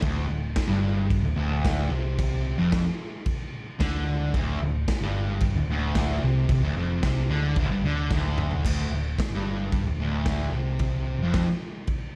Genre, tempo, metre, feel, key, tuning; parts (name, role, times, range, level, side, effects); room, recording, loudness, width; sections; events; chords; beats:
garage rock duo or trio; 111 BPM; 4/4; straight; D minor; A4 = 439 Hz
fuzz guitar; riff; 0.0-11.5 s; D2 to D3; -29 LUFS; equal; distortion
hollow-body short-scale fingered electric bass; bass; 0.0-11.4 s; D1 to D2; -31 LUFS; equal; tube saturation
raw garage drum kit; drums; 0.0-12.0 s; crash cymbal, kick drum, snare drum, toms; -31 LUFS; equal
moderate small room ambience, RT60 0.5 s; -26 LUFS; mono
0.0-8.6 A section; 8.6-12.2 B section
drum fill 8.1-8.6
0.0 N.C.; 8.6 Dm
| 0.03 0.57 1.10 1.64 | 2.18 2.71 3.25 3.79 | 4.33 4.87 5.41 5.94 | 6.48 7.02 7.56 8.10 | 8.64 9.18 9.72 10.26 | 10.79 11.33 11.87